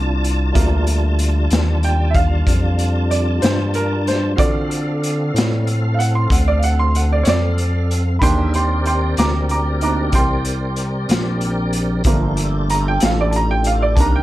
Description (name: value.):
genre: slow blues.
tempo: 63 BPM (dotted quarters).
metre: 12/8.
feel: straight.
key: G minor.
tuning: A4 = 441 Hz.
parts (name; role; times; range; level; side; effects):
clear baby grand piano; accompaniment; 0.0-14.2 s; Eb3 to D6; -22 LUFS; right 3 dB; none.
tonewheel organ; sustained chords; 0.0-14.2 s; G3 to A5; -25 LUFS; equal; slow rotary speaker, overdrive, chorus vibrato.
smooth synth bass; bass; 0.0-14.2 s; G1 to D3; -18 LUFS; equal; none.
raw garage drum kit; drums; 0.2-14.1 s; hi-hat, kick drum, snare drum; -20 LUFS; equal; none.
room: little or no reverb.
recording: none.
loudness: -15 LUFS.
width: side -15 dB against mid.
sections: 0.0-14.2 A section.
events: grand piano solo 0.0-14.2.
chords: 0.0 Gm9; 4.4 D7#9; 8.2 Cm9; 12.1 Gm9.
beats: | 0.55 1.51 2.47 3.42 | 4.38 5.34 6.30 7.26 | 8.22 9.18 10.14 11.10 | 12.06 13.02 13.98.